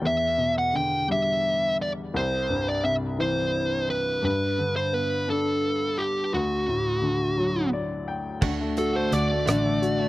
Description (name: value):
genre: six-eight pop ballad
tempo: 57 BPM (dotted quarters)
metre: 6/8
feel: straight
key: unclear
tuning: A4 = 438 Hz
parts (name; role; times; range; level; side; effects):
- warm grand piano; accompaniment; 0.0-10.1 s; C2 to G5; -27 LUFS; left 2 dB; none
- fuzz lead guitar; melody; 0.1-10.1 s; F#4 to G5; -25 LUFS; right 1 dB; distortion
- direct-recorded clean electric guitar; arpeggios; 8.4-10.1 s; D3 to F#4; -32 LUFS; right 6 dB; none
- vintage muted fingered electric bass; bass; 8.4-10.1 s; A1 to D2; -28 LUFS; equal; none
- damped 70s drum kit; drums; 8.4-10.0 s; crash cymbal, hi-hat, kick drum, rim click; -28 LUFS; right 1 dB; none
room: little or no reverb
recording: recorded outdoors, with no room sound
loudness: -23 LUFS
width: side -17 dB against mid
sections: 0.0-8.4 A section; 8.4-10.1 B section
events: grand piano fill 7.4-8.4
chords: 0.0 Em7; 2.1 C; 4.2 G; 6.3 D